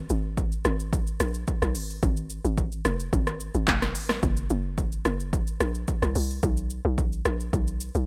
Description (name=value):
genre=amapiano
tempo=109 BPM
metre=4/4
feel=straight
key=unclear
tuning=A4 = 442 Hz
part: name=hollow log drum bass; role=bass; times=0.0-8.1 s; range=F1 to B#1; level=-30 LUFS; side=equal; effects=none
part: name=deep house drum kit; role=drums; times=0.1-8.1 s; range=handclaps, hi-hat, kick drum, rim click, shaker, snare drum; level=-30 LUFS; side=equal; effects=none
room=little or no reverb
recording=none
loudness=-27 LUFS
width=mono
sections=0.0-8.1 A section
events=none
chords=none